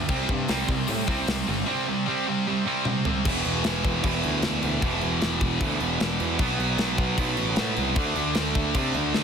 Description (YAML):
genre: heavy metal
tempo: 153 BPM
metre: 4/4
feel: straight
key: E minor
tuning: A4 = 443 Hz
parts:
  - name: heavy high-gain guitar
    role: riff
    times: 0.0-3.3 s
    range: C3 to C4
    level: -31 LUFS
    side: equal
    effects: distortion
  - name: high-gain distorted guitar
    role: riff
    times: 0.0-9.2 s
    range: E2 to D4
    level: -28 LUFS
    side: right 13 dB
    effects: distortion
  - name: scooped high-gain guitar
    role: riff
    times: 0.0-9.2 s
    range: E2 to D4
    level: -29 LUFS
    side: left 15 dB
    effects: distortion
  - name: fuzz picked electric bass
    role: bass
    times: 0.0-9.2 s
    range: E1 to C3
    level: -29 LUFS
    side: left 1 dB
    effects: overdrive
  - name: tight metal drum kit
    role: drums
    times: 0.1-9.2 s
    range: crash cymbal, hi-hat, kick drum, snare drum, toms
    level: -28 LUFS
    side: equal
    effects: none
room: little or no reverb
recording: dense, heavily limited modern master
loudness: -22 LUFS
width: side -7 dB against mid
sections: 0.0-3.3 A section; 3.3-9.2 B section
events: drum fill 2.9-3.3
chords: 0.1 C5; 3.3 E5; 6.4 B5; 8.0 D5